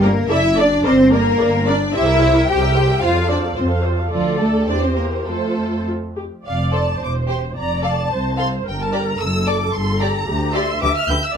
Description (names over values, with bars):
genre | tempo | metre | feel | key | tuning
quick classical-period movement for string orchestra | 110 BPM | 2/4 | rubato | F major | A4 = 440 Hz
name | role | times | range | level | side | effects
rich studio violin section | melody | 0.0-11.4 s | F4 to G6 | -24 LUFS | left 1 dB | none
rich studio violin section | second line | 0.0-11.2 s | F4 to G5 | -24 LUFS | left 3 dB | none
warm studio viola section | accompaniment | 0.0-11.4 s | F4 to F5 | -23 LUFS | right 2 dB | none
bright studio double bass section | bass | 0.0-11.2 s | E1 to F2 | -22 LUFS | right 1 dB | none
rich studio cello section | bass | 0.0-11.2 s | C2 to G4 | -20 LUFS | equal | none
room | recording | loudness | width
light reverb | dark, warm production | -16 LUFS | side -7 dB against mid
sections
0.0-6.5 A section; 6.5-11.4 A section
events
none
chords
0.3 D/F#; 0.9 Gm; 2.0 C7; 3.0 F; 4.1 Dm; 4.7 C7/E; 5.3 F; 7.0 C/E; 7.6 F; 8.7 Gm; 9.2 D/F#; 9.7 Gm; 10.8 G5/D